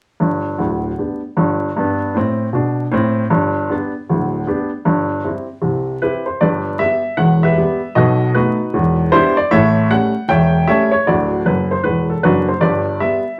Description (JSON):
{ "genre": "jazz, stride piano", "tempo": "155 BPM", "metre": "4/4", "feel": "swing 64% on 8ths", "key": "G major", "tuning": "A4 = 441 Hz", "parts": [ { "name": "warm upright piano", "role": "solo", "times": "0.2-13.4 s", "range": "D1 to G5", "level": "-16 LUFS", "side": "equal", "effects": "none" } ], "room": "wet studio reverb, RT60 0.5 s", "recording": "vinyl crackle", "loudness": "-17 LUFS", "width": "mono", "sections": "0.2-6.4 A section; 6.4-13.4 B section", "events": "upright piano fill 11.4-12.6", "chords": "0.2 G; 1.8 C5/G; 3.3 G; 4.9 C/G; 6.4 G; 7.2 Em; 8.0 B7; 8.7 Em7; 9.5 A7; 11.1 D; 12.6 G" }